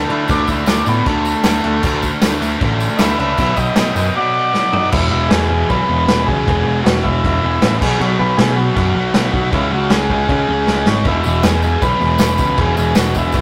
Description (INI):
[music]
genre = garage rock duo or trio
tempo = 156 BPM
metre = 4/4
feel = straight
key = E major from 4.9 s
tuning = A4 = 443 Hz
[part]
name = combo organ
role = melody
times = 0.0-13.4 s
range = A3 to G5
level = -21 LUFS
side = equal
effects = spring reverb, tape echo
[part]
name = thick fuzz guitar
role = riff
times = 0.0-13.4 s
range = E2 to D4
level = -22 LUFS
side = equal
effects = distortion
[part]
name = growling picked electric bass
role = bass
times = 0.0-13.4 s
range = E1 to D3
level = -22 LUFS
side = equal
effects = overdrive
[part]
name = vintage drum kit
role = drums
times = 0.1-13.4 s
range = crash cymbal, kick drum, snare drum, toms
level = -20 LUFS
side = equal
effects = none
[part]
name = tambourine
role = percussion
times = 0.3-4.1, 11.2-13.4 s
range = none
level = -35 LUFS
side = equal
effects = none
[sound]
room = moderate studio reverb, RT60 0.5 s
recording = rough rehearsal-room recording, tube saturation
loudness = -15 LUFS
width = mono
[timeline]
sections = 0.0-4.9 A section; 4.9-13.4 B section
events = transistor combo organ solo 0.0-4.9; drum fill 4.5-4.9, 10.7-11.1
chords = 0.0 D5; 3.4 B; 4.9 E; 7.8 B5; 9.5 C#5; 11.1 E5